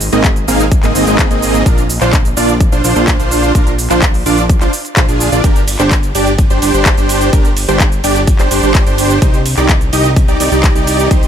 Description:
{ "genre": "EDM, festival progressive house", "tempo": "127 BPM", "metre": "4/4", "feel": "straight", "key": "unclear", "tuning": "A4 = 440 Hz", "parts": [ { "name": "fat analog bass", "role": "bass", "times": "0.0-11.3 s", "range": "G1 to C2", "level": "-17 LUFS", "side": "equal", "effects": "sidechain pumping" }, { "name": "big-room dance drum kit", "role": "drums", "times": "0.0-11.3 s", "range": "cabasa, handclaps, hi-hat, ride cymbal", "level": "-18 LUFS", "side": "equal", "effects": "none" }, { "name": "dense compressed supersaw", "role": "riff", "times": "0.1-11.3 s", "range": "Bb3 to F5", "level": "-14 LUFS", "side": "right 2 dB", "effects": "sidechain pumping, dub echo" }, { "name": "electronic kick drum", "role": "drums", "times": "0.2-11.2 s", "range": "none", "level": "-12 LUFS", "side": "equal", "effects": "overdrive" } ], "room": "little or no reverb", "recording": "none", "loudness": "-9 LUFS", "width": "side -9 dB against mid", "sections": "0.0-11.3 A section", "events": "none", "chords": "0.0 Abadd9; 1.7 Bb; 5.4 Gm; 9.2 Cm", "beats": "0.24 0.72 1.19 | 1.66 2.13 2.61 3.08 | 3.55 4.02 4.50 4.97 | 5.44 5.91 6.38 6.86 | 7.33 7.80 8.28 8.75 | 9.22 9.69 10.16 10.64 | 11.11" }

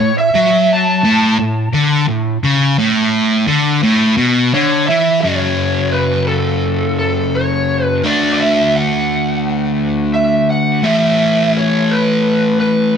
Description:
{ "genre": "rock", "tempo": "86 BPM", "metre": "4/4", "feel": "straight", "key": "unclear", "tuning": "A4 = 440 Hz", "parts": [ { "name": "lead guitar through a small cranked amp", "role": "melody", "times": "0.0-12.9 s", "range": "A4 to A5", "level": "-16 LUFS", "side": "right 1 dB", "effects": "overdrive" }, { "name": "sludgy distorted guitar", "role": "riff", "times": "0.0-13.0 s", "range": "F#2 to D4", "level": "-13 LUFS", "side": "left 1 dB", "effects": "overdrive" } ], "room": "moderate echo chamber reverb, RT60 1.7 s", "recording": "none", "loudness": "-12 LUFS", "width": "side -7 dB against mid", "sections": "0.0-5.2 A section; 5.2-13.0 B section", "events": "none", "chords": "0.0 N.C.; 5.2 F#m; 8.0 D; 10.8 A5", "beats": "0.35 1.05 1.75 | 2.44 3.14 3.84 4.54 | 5.24 5.94 6.64 7.34 | 8.04 8.74 9.44 10.14 | 10.85 11.55 12.25 12.95" }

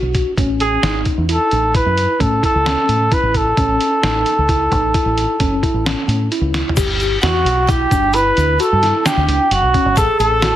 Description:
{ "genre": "progressive instrumental, band music in an uneven meter", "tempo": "131 BPM", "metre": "7/4", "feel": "straight", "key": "unclear", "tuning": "A4 = 439 Hz", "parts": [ { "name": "mellow tine electric piano", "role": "arpeggios", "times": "0.0-10.6 s", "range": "C#4 to G#4", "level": "-21 LUFS", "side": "left 1 dB", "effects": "medium stereo tremolo, ping-pong delay" }, { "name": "deep dub fingered electric bass", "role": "bass", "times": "0.0-10.6 s", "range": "F#1 to A2", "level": "-19 LUFS", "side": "equal", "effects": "none" }, { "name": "lo-fi sampler-style drum kit", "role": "drums", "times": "0.1-10.5 s", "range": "crash cymbal, hi-hat, kick drum, snare drum, toms", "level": "-20 LUFS", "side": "equal", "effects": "none" }, { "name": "dark trumpet", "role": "melody", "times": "0.6-10.6 s", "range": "F#4 to B4", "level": "-16 LUFS", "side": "right 1 dB", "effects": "none" }, { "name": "tube shaker", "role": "percussion", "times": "6.8-10.3 s", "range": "none", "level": "-33 LUFS", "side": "left 6 dB", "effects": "none" }, { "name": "vibraphone with hard mallets", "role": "second line", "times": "7.2-10.6 s", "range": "F#5 to B5", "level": "-22 LUFS", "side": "right 1 dB", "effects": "none" } ], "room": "moderate studio reverb, RT60 0.7 s", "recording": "heavily compressed radio sound, multiband compression, lossy compression artefacts", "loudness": "-13 LUFS", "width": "side -12 dB against mid", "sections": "0.0-6.8 A section; 6.8-10.6 B section", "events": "drum fill 6.5", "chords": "0.4 A; 6.8 Gmaj7; 10.0 Amaj7(no3)", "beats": "| 0.38 0.83 1.29 1.75 2.21 2.66 3.12 | 3.58 4.03 4.49 4.95 5.41 5.86 6.32 | 6.78 7.23 7.69 8.14 8.60 9.06 9.52 | 9.97 10.43" }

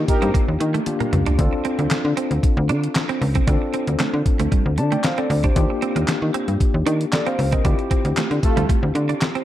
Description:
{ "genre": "early-eighties boogie funk", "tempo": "115 BPM", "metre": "4/4", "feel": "straight", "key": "D minor", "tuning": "A4 = 441 Hz", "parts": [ { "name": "tine electric piano", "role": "accompaniment", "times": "0.0-9.4 s", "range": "Bb3 to A5", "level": "-25 LUFS", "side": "left 4 dB", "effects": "fast stereo tremolo" }, { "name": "slap-like FM bass", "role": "bass", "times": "0.0-9.1 s", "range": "C#2 to Eb3", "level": "-20 LUFS", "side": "equal", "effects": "none" }, { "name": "analog synth brass", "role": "second line", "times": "0.1-0.3, 8.4-8.7 s", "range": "A3 to Bb4", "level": "-26 LUFS", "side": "equal", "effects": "chorus, tape echo" }, { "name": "detuned 8-bit digital drum machine", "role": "drums", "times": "0.1-9.4 s", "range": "handclaps, hi-hat, kick drum, snare drum, toms", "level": "-21 LUFS", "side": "equal", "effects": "none" }, { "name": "semi-hollow electric guitar", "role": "riff", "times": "0.2-9.4 s", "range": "G3 to D4", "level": "-27 LUFS", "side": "right 8 dB", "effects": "lush chorus" } ], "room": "light reverb, digital ambience", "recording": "none", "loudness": "-17 LUFS", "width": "side -13 dB against mid", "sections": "0.0-9.4 A section", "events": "band accent 0.0-1.4, 7.6-9.4; drum fill 0.9-1.4", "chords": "0.0 Ebmaj7; 1.4 Dm7; 5.6 Ebmaj7; 7.6 Dm11", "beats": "0.34 0.87 | 1.39 1.91 2.43 2.95 | 3.47 4.00 4.52 5.04 | 5.56 6.08 6.61 7.13 | 7.65 8.17 8.69 9.21" }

